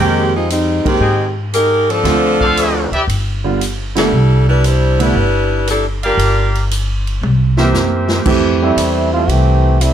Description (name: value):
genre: jazz, big band swing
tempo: 116 BPM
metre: 4/4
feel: swing 69% on 8ths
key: C major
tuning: A4 = 435 Hz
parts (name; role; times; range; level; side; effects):
- warm saxophone section; melody; 0.0-6.5 s; Eb3 to C5; -15 LUFS; left 1 dB; none
- clear concert grand piano; accompaniment; 0.0-9.7 s; D3 to G4; -18 LUFS; right 5 dB; none
- clear trumpet section; stabs; 0.0-8.2 s; G4 to G5; -18 LUFS; equal; none
- upright bass; bass; 0.0-9.9 s; G1 to Ab2; -16 LUFS; equal; none
- swinging big-band drum kit; drums; 0.5-9.9 s; crash cymbal, hi-hat, kick drum, ride cymbal, snare drum, toms; -23 LUFS; equal; none
- warm trombone section; second line; 8.6-9.9 s; E3 to G4; -15 LUFS; right 1 dB; none
room: light reverb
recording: dark, warm production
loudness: -12 LUFS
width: side -9 dB against mid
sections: 0.0-8.3 A section; 8.3-9.9 B section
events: band accent 0.8, 3.9; drum fill 7.2-8.3; trombone section solo 8.3-9.9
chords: 0.0 Fm11; 2.0 Dm7; 3.1 G7; 4.1 Cmaj13; 6.2 Gm7; 7.2 C7; 8.3 Fmaj9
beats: 0.49 1.01 1.53 | 2.05 2.56 3.08 3.60 | 4.12 4.63 5.15 5.67 | 6.19 6.71 7.22 7.74 | 8.26 8.77 9.29 9.81